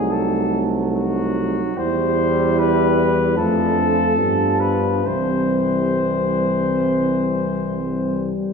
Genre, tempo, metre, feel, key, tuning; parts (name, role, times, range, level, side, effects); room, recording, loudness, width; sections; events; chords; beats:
classical, hymn-like piece for brass band; 63-77 BPM; 4/4; rubato; C major; A4 = 437 Hz
warm flugelhorn; melody; 0.0-8.3 s; Gb4 to C5; -22 LUFS; left 3 dB
dark French horn section; second line; 0.0-8.4 s; C4 to E4; -24 LUFS; right 4 dB
brilliant trombone; accompaniment; 0.0-8.4 s; E3 to G3; -27 LUFS; right 4 dB
dark euphonium; accompaniment; 0.0-8.5 s; G3 to B3; -25 LUFS; left 3 dB
warm tuba; bass; 0.0-8.3 s; C2 to G2; -24 LUFS; equal
wet scoring stage reverb, RT60 1.9 s; heard from further back in the room; -17 LUFS; side -5 dB against mid
0.0-8.5 A section
0.0 Cdim7; 1.8 C/E; 3.4 Dm/F; 4.2 G7; 5.1 C
0.13 0.93 | 1.78 2.57 3.37 4.18 | 5.07 6.02 6.94 7.83